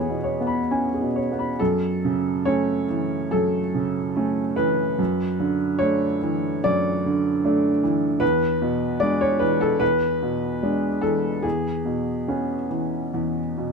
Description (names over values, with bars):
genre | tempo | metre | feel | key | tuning
neoclassical minimalist piano | 73 BPM | 4/4 | uneven beats, rubato | F# minor | A4 = 435 Hz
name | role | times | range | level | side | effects
clear upright piano | solo | 0.0-13.7 s | E2 to B5 | -20 LUFS | right 1 dB | none
room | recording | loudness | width
light reverb | minimal, uncompressed stereo recording | -20 LUFS | side -4 dB against mid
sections
0.0-1.6 A section; 1.6-13.7 B section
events
none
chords
0.0 C#m7/E; 1.6 F#m7; 5.0 Dadd9/F#; 8.2 E7; 11.4 C#m7/E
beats
0.69 | 1.60 2.46 3.32 4.16 | 4.99 5.82 6.63 7.43 | 8.22 9.01 9.81 10.61 | 11.44 12.28 13.14